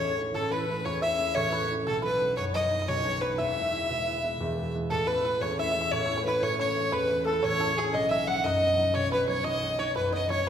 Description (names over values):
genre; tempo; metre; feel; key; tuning
celtic folk, Celtic slip jig; 119 BPM (dotted quarters); 9/8; straight; unclear; A4 = 442 Hz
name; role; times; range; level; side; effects
rich fiddle; melody; 0.0-10.5 s; G#4 to F#5; -28 LUFS; right 1 dB; none
bluegrass banjo; second line; 0.0-10.5 s; G#4 to F#5; -35 LUFS; right 2 dB; none
wooden flute; second line; 0.0-10.5 s; G#4 to F#5; -32 LUFS; left 5 dB; none
concert harp; accompaniment; 0.0-10.5 s; E1 to E4; -31 LUFS; equal; none
room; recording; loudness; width
wet recital hall reverb, RT60 1.7 s; recorded in a church or concert hall; -25 LUFS; side -8 dB against mid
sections
0.0-4.9 A section; 4.9-10.5 A section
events
none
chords
0.0 A; 1.9 B; 3.4 E; 4.9 A; 7.9 B